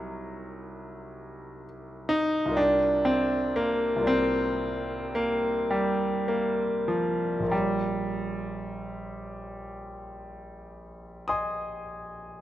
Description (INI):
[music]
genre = classical, impressionist solo piano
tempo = 30-44 BPM (dotted quarters)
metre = 9/8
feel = rubato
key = unclear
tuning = A4 = 438 Hz
[part]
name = clear concert grand piano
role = solo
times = 0.0-12.4 s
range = Bb1 to Eb6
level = -26 LUFS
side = equal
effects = none
[sound]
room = light reverb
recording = close, detailed microphones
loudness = -25 LUFS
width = side -13 dB against mid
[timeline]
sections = 0.0-12.4 A section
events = none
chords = 0.0 Ab9sus4/C; 2.6 C9sus4; 7.5 Bbm6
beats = 1.18 | 2.57 4.08 5.73 | 7.51 9.35 11.28